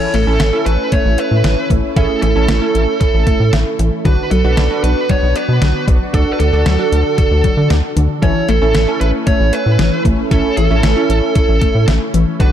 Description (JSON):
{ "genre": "synth-pop", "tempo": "115 BPM", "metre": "4/4", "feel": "straight", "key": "A major", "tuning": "A4 = 444 Hz", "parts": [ { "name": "smooth overdriven lead guitar", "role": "melody", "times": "0.0-12.5 s", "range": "A4 to C#5", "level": "-18 LUFS", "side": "right 3 dB", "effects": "ping-pong delay" }, { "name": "funky polysynth comp", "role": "accompaniment", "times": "0.0-12.5 s", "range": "C#4 to B4", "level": "-21 LUFS", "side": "right 2 dB", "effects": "chorus" }, { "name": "lush unison pad", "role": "sustained chords", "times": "0.6-12.5 s", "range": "D3 to A4", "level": "-22 LUFS", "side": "equal", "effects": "chorus, phaser" }, { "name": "wide unison pluck", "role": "arpeggios", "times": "0.0-12.5 s", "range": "D3 to E5", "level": "-22 LUFS", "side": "left 4 dB", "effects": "ping-pong delay" }, { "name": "rubbery square bass", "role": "bass", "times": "0.1-12.5 s", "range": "A1 to D3", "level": "-14 LUFS", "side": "equal", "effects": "none" }, { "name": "detuned 8-bit digital drum machine", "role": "drums", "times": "0.1-12.5 s", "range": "hi-hat, kick drum, snare drum", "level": "-17 LUFS", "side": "equal", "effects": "overdrive" } ], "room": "light reverb", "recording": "dark, warm production", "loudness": "-11 LUFS", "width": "side -10 dB against mid", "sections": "0.0-12.5 A section", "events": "none", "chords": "0.0 A; 4.1 Bm; 6.1 D; 8.2 A", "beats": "0.40 0.92 1.44 | 1.97 2.49 3.01 3.53 | 4.05 4.57 5.10 5.62 | 6.14 6.66 7.18 7.70 | 8.23 8.75 9.27 9.79 | 10.31 10.84 11.36 11.88 | 12.40" }